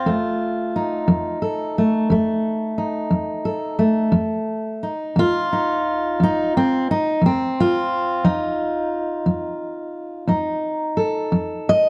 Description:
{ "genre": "acoustic country blues, solo or duo", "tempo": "59 BPM (dotted quarters)", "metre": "12/8", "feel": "straight", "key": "F mixolydian", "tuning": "A4 = 440 Hz", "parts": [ { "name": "fingerpicked steel-string acoustic guitar", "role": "solo", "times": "0.0-11.9 s", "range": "F2 to Eb5", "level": "-21 LUFS", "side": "equal", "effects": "none" } ], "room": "light reverb", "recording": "dark, warm production", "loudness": "-21 LUFS", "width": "mono", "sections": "0.0-11.9 A section", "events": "none", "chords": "0.0 F7" }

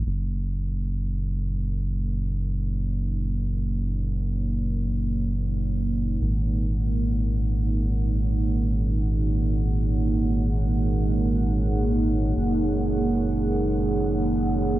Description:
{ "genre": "ambient dub", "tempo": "free time", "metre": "none", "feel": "none", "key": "unclear", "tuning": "A4 = 441 Hz", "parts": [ { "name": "deep dark ambient pad", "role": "sustained chords", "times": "0.1-14.8 s", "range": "A#3 to F#5", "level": "-27 LUFS", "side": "right 2 dB", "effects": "chorus, built-in reverb, cassette tape" }, { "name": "soft dub sub bass", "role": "bass", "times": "0.0-14.8 s", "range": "F#1 to G#1", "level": "-24 LUFS", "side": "equal", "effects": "tube saturation" } ], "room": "moderate studio ambience, RT60 0.5 s", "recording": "home recording on cassette", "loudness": "-22 LUFS", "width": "side -15 dB against mid", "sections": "0.0-14.8 A section", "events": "filter sweep on ambient pad 0.0-14.8", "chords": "0.1 F#add9; 6.2 G#sus2; 12.4 F#add9" }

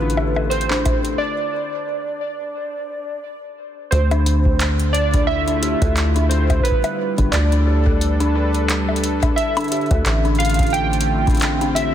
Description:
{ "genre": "IDM", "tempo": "88 BPM", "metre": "4/4", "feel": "swing 56% on 16ths", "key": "D dorian", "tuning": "A4 = 440 Hz", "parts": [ { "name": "warbly lo-fi synth keys", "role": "melody", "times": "0.0-11.9 s", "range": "B4 to G5", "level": "-23 LUFS", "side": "right 2 dB", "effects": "chorus, ping-pong delay" }, { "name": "warm analog pad", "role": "sustained chords", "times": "0.0-11.9 s", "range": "D3 to B4", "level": "-26 LUFS", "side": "right 2 dB", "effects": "chorus" }, { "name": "dark detuned synth bell", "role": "arpeggios", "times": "0.0-11.9 s", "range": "D4 to A4", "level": "-25 LUFS", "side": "left 5 dB", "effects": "chorus, tape echo" }, { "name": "deep acid bass", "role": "bass", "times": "0.0-11.9 s", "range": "G1 to D2", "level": "-19 LUFS", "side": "equal", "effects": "none" }, { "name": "booming analog drum machine", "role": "drums", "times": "0.1-11.9 s", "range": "bongos, handclaps, hi-hat", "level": "-25 LUFS", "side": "left 2 dB", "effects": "none" }, { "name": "electronic kick drum", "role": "drums", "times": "0.9-11.4 s", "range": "none", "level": "-21 LUFS", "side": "equal", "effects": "none" } ], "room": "light reverb, digital ambience", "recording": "dense, heavily limited modern master", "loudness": "-16 LUFS", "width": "side -10 dB against mid", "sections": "0.0-3.9 A section; 3.9-11.9 B section", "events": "break 1.2-3.9", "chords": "0.0 Dm9; 1.2 N.C.; 3.9 Dm9; 6.7 G7; 9.4 Dm9" }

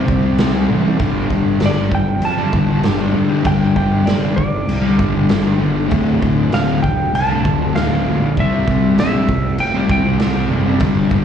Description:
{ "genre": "garage rock duo or trio", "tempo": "98 BPM", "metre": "4/4", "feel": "straight", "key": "unclear", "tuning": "A4 = 440 Hz", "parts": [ { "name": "clean lap steel guitar", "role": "melody", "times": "0.0-10.5 s", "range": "C5 to A5", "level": "-23 LUFS", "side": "right 2 dB", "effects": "slapback echo" }, { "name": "fuzz guitar", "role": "riff", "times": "0.0-11.2 s", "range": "D2 to C4", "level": "-17 LUFS", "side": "left 1 dB", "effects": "distortion" }, { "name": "fuzz picked electric bass", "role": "bass", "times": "0.0-11.2 s", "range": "D1 to G2", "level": "-19 LUFS", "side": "equal", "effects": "overdrive" }, { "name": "raw garage drum kit", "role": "drums", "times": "0.1-11.2 s", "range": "crash cymbal, kick drum, snare drum", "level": "-20 LUFS", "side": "equal", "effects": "vintage 12-bit sampler grit" } ], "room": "light reverb", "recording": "live gig heard through the venue's PA, cassette tape, club reverb", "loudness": "-14 LUFS", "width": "side -8 dB against mid", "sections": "0.0-11.2 A section", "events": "none", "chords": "0.0 C5; 1.0 G5; 5.9 Dm; 8.4 C" }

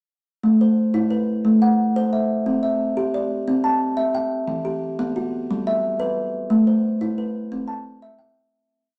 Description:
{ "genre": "southern african traditional, mbira-style interlocking cycle", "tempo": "119 BPM (dotted quarters)", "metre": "12/8", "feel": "straight", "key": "A dorian", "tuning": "A4 = 440 Hz", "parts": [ { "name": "kalimba", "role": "solo", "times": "0.4-8.7 s", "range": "E3 to A5", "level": "-21 LUFS", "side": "equal", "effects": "none" } ], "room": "wet large studio reverb, RT60 1.2 s", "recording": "none", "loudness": "-21 LUFS", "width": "mono", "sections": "0.4-8.5 A section", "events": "fade-out 6.5-8.5", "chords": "0.4 Am; 2.5 C; 4.5 Em; 5.5 G; 6.5 Am; 7.5 C" }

